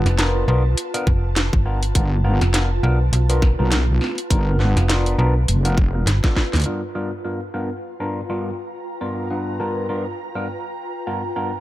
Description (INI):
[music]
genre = glitch hop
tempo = 102 BPM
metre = 4/4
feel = swing 57% on 16ths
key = unclear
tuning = A4 = 443 Hz
[part]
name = overdriven tine electric piano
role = stabs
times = 0.0-11.5 s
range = G2 to B4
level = -26 LUFS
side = left 1 dB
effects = phaser, sidechain pumping, dub echo
[part]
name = wobble bass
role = bass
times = 0.0-6.6 s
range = F1 to D2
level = -18 LUFS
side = equal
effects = chorus, overdrive
[part]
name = ethereal airy pad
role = texture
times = 0.0-11.6 s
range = F4 to A#5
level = -30 LUFS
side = right 2 dB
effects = ensemble chorus, built-in reverb, sidechain pumping
[part]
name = slap-like FM bass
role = bass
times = 0.1-6.2 s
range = F1 to B1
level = -18 LUFS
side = equal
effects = none
[part]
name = drum and bass drum kit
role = drums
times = 0.1-6.7 s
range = hi-hat, snare drum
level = -23 LUFS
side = equal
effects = none
[part]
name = electronic kick drum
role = drums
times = 1.1-6.5 s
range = none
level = -17 LUFS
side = equal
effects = none
[sound]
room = little or no reverb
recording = none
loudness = -18 LUFS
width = side -15 dB against mid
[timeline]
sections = 0.0-6.7 A section; 6.7-11.6 B section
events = drum fill 6.1-6.7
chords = 0.0 G7#9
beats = 0.19 0.78 1.36 | 1.95 2.54 3.13 3.72 | 4.30 4.89 5.48 6.07 | 6.66 7.25 7.83 8.42 | 9.01 9.60 10.19 10.78 | 11.36